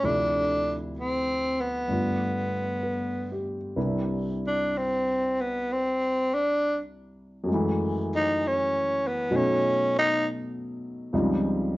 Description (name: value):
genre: jazz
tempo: 65 BPM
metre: 4/4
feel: swing 66% on 8ths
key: C major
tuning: A4 = 437 Hz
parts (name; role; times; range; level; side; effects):
- growling tenor saxophone; melody; 0.0-10.3 s; B3 to Eb4; -25 LUFS; equal; none
- dark baby grand piano; accompaniment; 0.0-11.8 s; C2 to B4; -28 LUFS; equal; none
room: moderate studio reverb, RT60 0.8 s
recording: worn, warbling old tape, cassette tape, warbly pitch drift, nothing above 7.7 kHz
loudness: -24 LUFS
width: side -18 dB against mid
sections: 0.0-3.8 A section; 3.8-11.8 B section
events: tenor saxophone solo 3.8-11.8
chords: 0.0 Dm7; 1.9 G7; 3.8 Cmaj9; 7.5 F#m7; 9.3 B9; 11.1 Dbmaj9#11